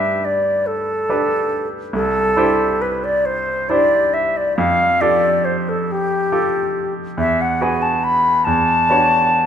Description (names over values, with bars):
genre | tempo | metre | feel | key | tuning
classical, impressionist duo for flute and grand piano | 46 BPM (dotted quarters) | 6/8 | rubato | unclear | A4 = 440 Hz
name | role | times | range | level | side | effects
concert flute | melody | 0.0-9.5 s | G4 to B5 | -16 LUFS | left 1 dB | none
bright concert grand piano | accompaniment | 0.0-9.5 s | C2 to C#5 | -20 LUFS | right 2 dB | none
room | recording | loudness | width
moderate recital hall reverb, RT60 1.4 s | minimal, uncompressed stereo recording | -15 LUFS | side -8 dB against mid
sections
0.0-9.5 A section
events
none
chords
0.0 Gadd9; 1.9 Cadd9; 4.6 Fadd9; 7.2 Eadd9; 8.5 Bmadd9/E